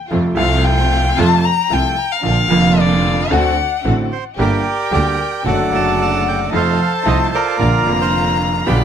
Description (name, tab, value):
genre	tango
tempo	112 BPM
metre	4/4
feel	rubato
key	unclear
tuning	A4 = 441 Hz
part	bright upright piano	accompaniment	0.1-8.8 s	F1 to G4	-19 LUFS	right 2 dB	none
part	warm studio string section	stabs	0.1-8.8 s	A3 to G4	-24 LUFS	equal	none
part	clear double bass	bass	0.1-8.8 s	F1 to F2	-18 LUFS	right 1 dB	none
part	rich violin	second line	0.4-8.8 s	D5 to B5	-19 LUFS	left 7 dB	tape echo
part	bandoneon	melody	4.1-8.8 s	F4 to A5	-19 LUFS	right 7 dB	none
room	light reverb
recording	close, detailed microphones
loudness	-13 LUFS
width	side -8 dB against mid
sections	0.0-4.4 A section; 4.4-8.8 B section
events	violin solo 0.0-4.4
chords	0.1 F; 2.2 Bb; 3.3 D7; 4.4 Gm; 5.5 D/F#; 6.5 F7; 7.6 Bb